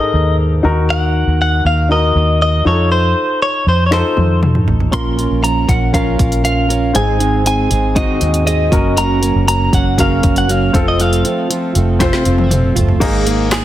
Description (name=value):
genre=piano-driven pop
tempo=119 BPM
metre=4/4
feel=straight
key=unclear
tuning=A4 = 440 Hz
part: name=direct-recorded clean electric guitar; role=melody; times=0.0-13.6 s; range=Ab4 to C6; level=-18 LUFS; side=equal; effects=none
part: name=warm baby grand piano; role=accompaniment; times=0.0-13.6 s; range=Ab2 to C5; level=-19 LUFS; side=left 2 dB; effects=none
part: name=vintage muted fingered electric bass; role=bass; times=0.1-13.6 s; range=F1 to F2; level=-15 LUFS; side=equal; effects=none
part: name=deep house drum kit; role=drums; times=3.9-13.6 s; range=crash cymbal, handclaps, hi-hat, kick drum, snare drum, toms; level=-17 LUFS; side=equal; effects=soft clipping on snare
part: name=fingerpicked plugged-in steel-string acoustic guitar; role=riff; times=4.9-13.6 s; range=F2 to Bb4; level=-19 LUFS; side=right 5 dB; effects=none
room=light reverb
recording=dense, heavily limited modern master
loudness=-12 LUFS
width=side -13 dB against mid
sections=0.0-13.0 A section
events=drum fill 3.9-4.9, 12.0-13.0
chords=0.0 Ab; 0.6 Ebm; 2.7 F7; 4.9 Bbm; 7.0 Ab; 8.7 Gb; 10.7 F; 13.0 Absus2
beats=0.39 | 0.89 1.40 1.90 2.41 | 2.91 3.42 3.92 4.43 | 4.93 5.43 5.94 6.45 | 6.95 7.46 7.96 8.46 | 8.97 9.47 9.98 10.48 | 10.99 11.50 12.00 12.51 | 13.01 13.52